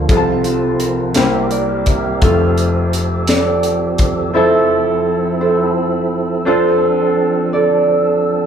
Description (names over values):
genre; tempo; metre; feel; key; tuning
slow gospel; 57 BPM (dotted quarters); 6/8; straight; F major; A4 = 437 Hz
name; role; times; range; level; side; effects
concert harp; melody; 0.0-8.5 s; C4 to F5; -17 LUFS; right 3 dB; none
clear grand piano; accompaniment; 0.0-8.5 s; F1 to A5; -19 LUFS; left 3 dB; none
percussive tonewheel organ; sustained chords; 0.0-8.5 s; C3 to Bb4; -18 LUFS; right 1 dB; overdrive, chorus vibrato, slow rotary speaker
crisp fusion drum kit; drums; 0.1-4.2 s; hi-hat, kick drum, snare drum; -17 LUFS; left 1 dB; none
room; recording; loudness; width
moderate large studio reverb, RT60 0.9 s; band playing live in one room; -13 LUFS; side -8 dB against mid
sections
0.0-4.3 A section; 4.3-8.5 B section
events
none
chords
0.1 F/C; 1.2 C7; 2.2 F; 4.3 Fmaj7; 6.5 Dm7/F